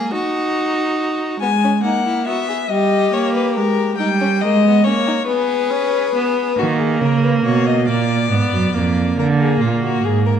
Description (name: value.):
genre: classical, baroque-style fugue for string quartet.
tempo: 46 BPM (dotted quarters).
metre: 6/8.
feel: straight.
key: unclear.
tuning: A4 = 440 Hz.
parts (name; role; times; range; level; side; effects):
clear violin; second line; 0.0-6.6 s; A#3 to G#4; -23 LUFS; left 2 dB; none.
clear viola; accompaniment; 0.0-10.4 s; G3 to D#4; -19 LUFS; right 2 dB; none.
rich violin; melody; 1.4-10.3 s; E#4 to G#5; -20 LUFS; left 8 dB; none.
clear cello; bass; 6.6-10.4 s; E#2 to D#3; -17 LUFS; right 4 dB; none.
room: wet recital hall reverb, RT60 1.7 s.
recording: dark, warm production.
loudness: -15 LUFS.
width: side -8 dB against mid.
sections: 0.0-10.4 A section.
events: none.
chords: 0.1 D#m; 1.4 G#m; 2.7 D#7/G; 5.3 G#m/B; 6.6 D#5; 7.9 A#; 9.2 A#7.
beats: 0.12 | 1.41 2.70 | 3.98 5.28 | 6.58 7.88 | 9.18.